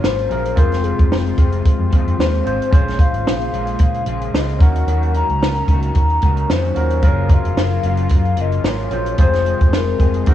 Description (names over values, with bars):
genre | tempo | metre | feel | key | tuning
indie pop, bedroom pop | 111 BPM | 4/4 | swing 55% on 16ths | unclear | A4 = 440 Hz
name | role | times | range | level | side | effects
hollow clarinet-like synth lead | melody | 0.0-10.3 s | Ab4 to Bb5 | -23 LUFS | left 3 dB | wide subtle chorus, analog delay
barky tine electric piano | accompaniment | 0.0-10.3 s | C4 to C5 | -27 LUFS | right 4 dB | overdrive
electric guitar through a small old amp | accompaniment | 0.0-10.3 s | Ab2 to Ab4 | -26 LUFS | left 6 dB | analog chorus, warbly pitch drift
phased analog pad | sustained chords | 0.0-10.3 s | C3 to Ab4 | -30 LUFS | left 2 dB | phaser, chorus
vintage muted fingered electric bass | bass | 0.0-10.3 s | F1 to Bb2 | -20 LUFS | equal | none
compact cocktail drum kit | drums | 0.0-10.3 s | hi-hat, kick drum, snare drum | -15 LUFS | equal | vintage 12-bit sampler grit
room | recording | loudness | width
studio ambience | worn, warbling old tape, cassette tape, warbly pitch drift, small room ambience | -14 LUFS | side -12 dB against mid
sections
0.0-10.3 A section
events
none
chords
0.0 Gbmaj7; 0.6 Fm; 2.7 Bbm7; 4.6 Ebm7; 7.0 Gbmaj7; 9.2 Fm